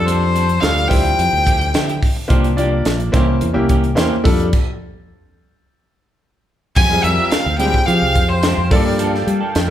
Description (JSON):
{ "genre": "electric jazz fusion", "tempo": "108 BPM", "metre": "4/4", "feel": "straight", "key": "unclear", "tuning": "A4 = 440 Hz", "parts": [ { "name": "bright violin", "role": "melody", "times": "0.0-2.0, 6.8-9.2 s", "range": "C5 to Ab5", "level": "-18 LUFS", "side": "left 1 dB", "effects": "none" }, { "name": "clear concert grand piano", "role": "accompaniment", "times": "0.0-9.7 s", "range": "G3 to D5", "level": "-20 LUFS", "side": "equal", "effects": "none" }, { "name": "modern bright fingered electric bass", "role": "bass", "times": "0.0-9.7 s", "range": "Bb1 to G3", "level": "-19 LUFS", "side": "equal", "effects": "none" }, { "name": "clean electric guitar", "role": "stabs", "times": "0.1-9.6 s", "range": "E3 to A4", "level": "-27 LUFS", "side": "right 3 dB", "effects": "none" }, { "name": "crisp fusion drum kit", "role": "drums", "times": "0.1-9.7 s", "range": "crash cymbal, hi-hat, kick drum, snare drum", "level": "-18 LUFS", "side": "equal", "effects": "none" }, { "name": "warm analog pad", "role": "sustained chords", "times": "6.8-9.7 s", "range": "F5 to A5", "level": "-28 LUFS", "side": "right 3 dB", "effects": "chorus" } ], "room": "moderate large studio reverb, RT60 1.3 s", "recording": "band playing live in one room", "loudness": "-13 LUFS", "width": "side -11 dB against mid", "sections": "0.0-6.8 A section; 6.8-9.7 B section", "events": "stop 4.5-6.8", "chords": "0.0 F69; 0.9 Dm11; 2.3 C9sus4; 3.1 C7b9; 4.2 F69; 5.4 N.C.; 6.8 Fmadd9; 8.7 Gm9" }